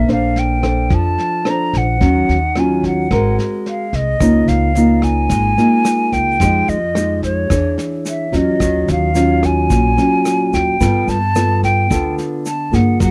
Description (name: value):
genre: bossa nova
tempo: 109 BPM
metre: 4/4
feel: straight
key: unclear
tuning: A4 = 440 Hz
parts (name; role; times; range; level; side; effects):
- hollow concert flute; melody; 0.0-13.1 s; Db5 to Bb5; -21 LUFS; equal; none
- nylon-string guitar; accompaniment; 0.0-13.1 s; Bb2 to C#5; -19 LUFS; equal; none
- upright bass; bass; 0.0-13.1 s; Ab1 to G2; -20 LUFS; equal; none
- vintage brush drum kit; drums; 0.1-13.1 s; kick drum, rim click, snare drum; -25 LUFS; equal; none
- tube shaker; percussion; 4.2-13.1 s; none; -37 LUFS; equal; none
room: little or no reverb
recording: dry, close 1970s-style studio recording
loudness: -16 LUFS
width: mono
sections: 0.0-13.1 A section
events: none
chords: 0.0 Bbmaj9; 2.0 Ebm9; 3.1 Ab9; 4.2 Db69; 6.4 Fm9; 7.5 E13; 8.6 Ebm9; 10.8 G9